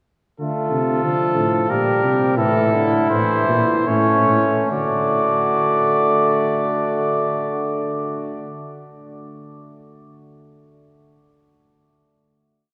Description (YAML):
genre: classical, imitative canzona for brass ensemble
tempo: 68-95 BPM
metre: 3/4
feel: straight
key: unclear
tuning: A4 = 439 Hz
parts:
  - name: mellow trumpet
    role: melody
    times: 0.4-8.6 s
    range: A4 to D5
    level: -24 LUFS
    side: equal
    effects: none
  - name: warm flugelhorn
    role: second line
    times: 0.4-8.6 s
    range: C#4 to G4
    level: -26 LUFS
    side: equal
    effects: none
  - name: bright trombone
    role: accompaniment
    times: 0.4-8.6 s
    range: D3 to A3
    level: -25 LUFS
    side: equal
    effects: none
  - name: clear tuba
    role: bass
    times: 0.4-8.6 s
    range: A2 to D3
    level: -26 LUFS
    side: equal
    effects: none
room: wet cathedral reverb, RT60 5.3 s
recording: recorded in a church or concert hall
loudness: -19 LUFS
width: mono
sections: 0.4-4.7 exposition; 4.7-10.0 final chord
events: slowing down 0.4-6.0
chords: 0.4 Dm; 1.7 Gm/Bb; 2.4 Asus4; 3.9 A; 4.7 D